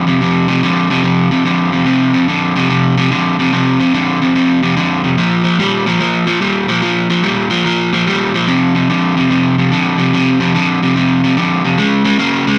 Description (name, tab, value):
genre	blues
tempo	145 BPM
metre	4/4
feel	swing 66% on 8ths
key	F minor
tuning	A4 = 440 Hz
part	crunchy overdriven guitar	solo	0.0-12.6 s	F2 to Bb3	-13 LUFS	equal	none
room	moderate studio ambience, RT60 0.5 s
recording	none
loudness	-13 LUFS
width	mono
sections	0.0-12.6 A section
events	none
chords	0.0 F5; 5.2 Bb5; 8.5 F5; 11.8 Db5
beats	| 0.21 0.63 1.04 1.46 | 1.87 2.28 2.70 3.11 | 3.52 3.94 4.35 4.76 | 5.18 5.59 6.00 6.42 | 6.83 7.24 7.65 8.06 | 8.48 8.89 9.30 9.72 | 10.13 10.55 10.96 11.37 | 11.79 12.20